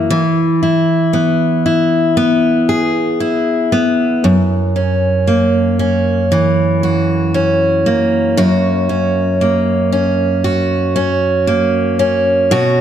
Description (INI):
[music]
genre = pop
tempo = 58 BPM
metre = 4/4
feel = straight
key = unclear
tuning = A4 = 441 Hz
[part]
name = picked steel-string acoustic guitar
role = solo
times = 0.0-12.8 s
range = F#2 to G#4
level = -12 LUFS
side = equal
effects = none
[sound]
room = moderate scoring stage reverb, RT60 2.0 s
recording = none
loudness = -12 LUFS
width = side -9 dB against mid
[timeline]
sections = 0.0-8.4 A section; 8.4-12.8 B section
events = none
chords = 0.1 E; 4.2 F#7; 8.4 F#